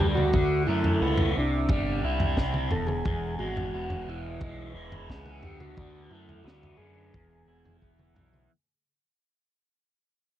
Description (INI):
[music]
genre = psychedelic rock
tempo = 88 BPM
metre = 4/4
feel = straight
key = unclear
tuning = A4 = 441 Hz
[part]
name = combo organ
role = melody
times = 0.0-7.8 s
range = D4 to A4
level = -31 LUFS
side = right 1 dB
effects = spring reverb, slapback echo
[part]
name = crunchy overdriven guitar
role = riff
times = 0.0-8.5 s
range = E2 to G4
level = -32 LUFS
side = equal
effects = phaser
[part]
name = growling picked electric bass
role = bass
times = 0.0-8.5 s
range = E1 to F#2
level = -32 LUFS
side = equal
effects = overdrive
[part]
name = crunchy breakbeat drum kit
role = drums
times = 0.0-8.5 s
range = kick drum, snare drum, toms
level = -29 LUFS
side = equal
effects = none
[sound]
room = little or no reverb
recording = dry, close 1970s-style studio recording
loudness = -25 LUFS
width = side -12 dB against mid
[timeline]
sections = 0.0-8.5 A section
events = fade-out 0.0-8.5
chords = 0.3 D6; 1.4 C; 2.7 E; 5.4 D6; 7.1 E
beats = | 0.33 1.01 1.70 2.38 | 3.06 3.74 4.42 5.10 | 5.78 6.46 7.14 7.83